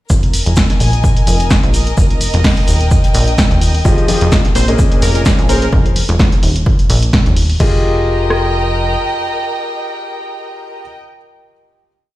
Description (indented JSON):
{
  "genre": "piano house",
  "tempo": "128 BPM",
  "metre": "4/4",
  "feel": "swing 55% on 16ths",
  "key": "F minor",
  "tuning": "A4 = 439 Hz",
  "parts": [
    { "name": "plucky analog bass", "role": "bass", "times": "0.1-9.0 s", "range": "Eb1 to Bb1", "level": "-14 LUFS", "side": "equal", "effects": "sidechain pumping" },
    { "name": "punchy analog drum machine", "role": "drums", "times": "0.1-8.4 s", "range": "kick drum, rim click", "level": "-13 LUFS", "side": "equal", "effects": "none" },
    { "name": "vintage brush drum kit", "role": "drums", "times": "0.1-5.6 s", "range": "hi-hat, shaker, snare drum", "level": "-26 LUFS", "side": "left 1 dB", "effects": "high-pass filter on hats, high-pass filter on snare, high-pass filter on perc, high-pass filter on room" },
    { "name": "dark chamber string section", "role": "texture", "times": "0.1-11.0 s", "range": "Bb4 to Ab5", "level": "-21 LUFS", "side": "equal", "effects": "sidechain pumping" },
    { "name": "punchy analog drum machine", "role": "drums", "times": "0.2-7.7 s", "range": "crash cymbal, hi-hat, snare drum", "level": "-19 LUFS", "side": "equal", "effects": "none" },
    { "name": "clear grand piano", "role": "riff", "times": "3.8-10.8 s", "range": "Bb2 to Eb5", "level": "-19 LUFS", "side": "left 2 dB", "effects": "sidechain pumping, ping-pong delay" },
    { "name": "plucky unison lead", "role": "melody", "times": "4.6-5.7 s", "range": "Bb4 to C5", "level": "-22 LUFS", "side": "left 1 dB", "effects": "ping-pong delay" }
  ],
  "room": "small room ambience",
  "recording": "played on a big sound system in a bare room, stone room reverb",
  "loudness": "-10 LUFS",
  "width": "side -16 dB against mid",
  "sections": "0.1-7.6 groove; 7.6-11.3 final chord",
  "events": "none",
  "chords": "0.1 Fm7; 2.0 Fsus2; 2.7 Eb; 3.9 Fm9; 4.6 Bbm9; 5.7 N.C.; 6.4 Eb5; 7.6 Fm9"
}